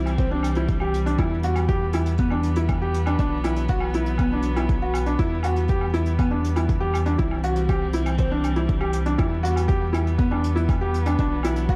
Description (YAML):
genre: piano and strings electronica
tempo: 120 BPM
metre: 4/4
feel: straight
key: E minor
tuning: A4 = 438 Hz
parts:
  - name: dark string quartet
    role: sustained chords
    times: 0.0-11.8 s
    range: E3 to C4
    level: -32 LUFS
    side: equal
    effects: sidechain pumping
  - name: felt-muted upright piano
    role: riff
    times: 0.0-11.8 s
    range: B3 to G4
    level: -28 LUFS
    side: equal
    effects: digital delay
  - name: warm sub bass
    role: bass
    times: 0.0-11.8 s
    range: B1 to E2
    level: -27 LUFS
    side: equal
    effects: tube saturation, sidechain pumping
  - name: woodblock and hi-hat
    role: drums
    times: 0.1-11.8 s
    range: none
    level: -38 LUFS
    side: equal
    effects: none
  - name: electronic kick drum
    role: drums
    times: 0.2-11.8 s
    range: none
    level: -26 LUFS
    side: equal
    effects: overdrive
room: light reverb, small room reverb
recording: dark, warm production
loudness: -23 LUFS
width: mono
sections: 0.0-11.8 A section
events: none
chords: 0.0 C; 1.2 Em; 3.2 Bsus4; 5.2 Em; 7.2 C; 9.2 Em; 11.2 Bsus4